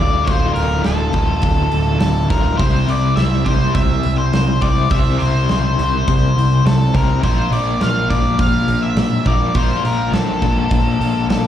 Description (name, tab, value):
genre	classic rock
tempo	104 BPM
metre	4/4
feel	straight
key	unclear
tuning	A4 = 441 Hz
part	octave-fuzz lead guitar	melody	0.0-11.5 s	A4 to F5	-21 LUFS	left 3 dB	distortion, slapback echo
part	crunchy overdriven guitar	riff	0.0-11.5 s	D2 to C5	-21 LUFS	left 7 dB	tremolo, slapback echo
part	raw garage guitar	riff	0.0-11.5 s	D2 to C5	-25 LUFS	right 9 dB	overdrive
part	growling picked electric bass	bass	0.0-11.5 s	D1 to C2	-18 LUFS	right 1 dB	overdrive
part	big rock drum kit	drums	0.3-11.4 s	hi-hat, kick drum, snare drum	-20 LUFS	right 1 dB	none
part	bright tonewheel organ	sustained chords	7.2-11.5 s	Bb3 to D5	-34 LUFS	equal	none
room	small room reverb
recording	live gig heard through the venue's PA, club reverb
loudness	-14 LUFS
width	side -10 dB against mid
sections	0.0-11.5 A section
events	none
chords	0.0 Dm; 2.6 C; 7.2 Bb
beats	| 0.28 0.86 1.44 2.02 | 2.60 3.18 3.76 4.34 | 4.92 5.49 6.07 6.65 | 7.23 7.81 8.39 8.97 | 9.55 10.13 10.71 11.29